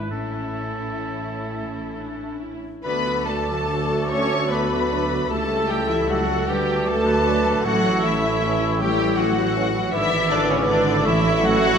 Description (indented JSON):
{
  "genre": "classical",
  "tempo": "43-54 BPM (dotted quarters)",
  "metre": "6/8",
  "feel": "rubato",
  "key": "D major",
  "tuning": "A4 = 441 Hz",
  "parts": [
    { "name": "muted studio violin section", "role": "melody", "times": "0.0-11.8 s", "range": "E4 to C#6", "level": "-28 LUFS", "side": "left 4 dB", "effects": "none" },
    { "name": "muted chamber violin section", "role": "second line", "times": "0.0-11.8 s", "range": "C#4 to C#5", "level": "-30 LUFS", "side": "left 1 dB", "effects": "none" },
    { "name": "warm clarinet", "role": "second line", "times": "0.0-11.8 s", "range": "C#4 to G4", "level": "-33 LUFS", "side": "equal", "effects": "none" },
    { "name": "warm oboe", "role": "second line", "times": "0.0-11.8 s", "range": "A4 to D5", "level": "-31 LUFS", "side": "equal", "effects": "none" },
    { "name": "muted studio viola section", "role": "accompaniment", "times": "0.0-11.8 s", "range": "D3 to F#4", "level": "-31 LUFS", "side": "equal", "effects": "none" },
    { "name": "mellow French horn section", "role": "sustained chords", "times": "0.0-11.8 s", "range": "C#4 to B4", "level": "-27 LUFS", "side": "left 2 dB", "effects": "none" },
    { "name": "muted studio cello section", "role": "bass", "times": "0.0-11.8 s", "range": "A2 to C#4", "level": "-28 LUFS", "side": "right 2 dB", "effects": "none" },
    { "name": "muted studio double bass section", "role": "bass", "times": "0.0-11.8 s", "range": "G#1 to D2", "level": "-31 LUFS", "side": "right 2 dB", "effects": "none" },
    { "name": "warm bassoon", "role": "accompaniment", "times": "2.8-11.8 s", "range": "A3 to B3", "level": "-30 LUFS", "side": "right 3 dB", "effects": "none" },
    { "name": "mellow trumpet section", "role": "stabs", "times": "2.8-11.8 s", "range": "C#4 to C#5", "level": "-27 LUFS", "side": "equal", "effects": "none" },
    { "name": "warm tuba", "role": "bass", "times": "2.8-11.8 s", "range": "G#1 to D2", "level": "-29 LUFS", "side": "right 3 dB", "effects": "none" },
    { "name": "mellow hollow flute section", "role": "second line", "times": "2.9-11.8 s", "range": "D6 to E6", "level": "-31 LUFS", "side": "right 1 dB", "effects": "none" },
    { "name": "mellow trombone section", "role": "sustained chords", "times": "3.7-10.8 s", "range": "E3 to E4", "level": "-34 LUFS", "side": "right 2 dB", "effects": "none" }
  ],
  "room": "wet scoring stage reverb, RT60 1.8 s",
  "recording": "none",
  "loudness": "-19 LUFS",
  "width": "side -7 dB against mid",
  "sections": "0.0-2.9 A section; 2.9-11.8 B section",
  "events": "none",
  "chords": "0.1 A; 2.9 D; 5.3 A7/C#; 6.5 D; 7.7 A; 9.9 E7/G#; 11.1 A",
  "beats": "| 0.11 1.50 | 2.85 4.10 | 5.30 6.48 | 7.66 8.80 | 9.93 11.05"
}